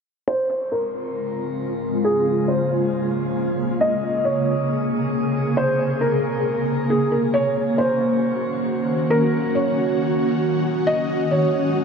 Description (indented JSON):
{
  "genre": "hip hop",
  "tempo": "136 BPM",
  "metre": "4/4",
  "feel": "half-time",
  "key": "unclear",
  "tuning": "A4 = 441 Hz",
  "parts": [
    { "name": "felt-muted upright piano", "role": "melody", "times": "0.3-11.8 s", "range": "Ab4 to Eb5", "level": "-22 LUFS", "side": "equal", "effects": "low-pass filter, tape echo" },
    { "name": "ethereal airy pad", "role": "sustained chords", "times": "0.8-11.8 s", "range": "C3 to Ab4", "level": "-21 LUFS", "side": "equal", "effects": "ensemble chorus, built-in reverb, tremolo, low-pass filter" }
  ],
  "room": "wet shimmer reverb, RT60 4.3 s",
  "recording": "none",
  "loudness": "-19 LUFS",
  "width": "side -6 dB against mid",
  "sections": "0.3-11.8 A section",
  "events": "filter sweep 0.3-11.8",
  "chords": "0.3 Dbmaj7; 3.8 Bbm9; 7.3 Gb6; 10.9 Ab7sus4",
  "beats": "| 0.28 0.72 1.16 1.60 | 2.04 2.49 2.93 3.37 | 3.81 4.25 4.69 5.13 | 5.57 6.01 6.46 6.90 | 7.34 7.78 8.22 8.66 | 9.10 9.54 9.99 10.43 | 10.87 11.31 11.75"
}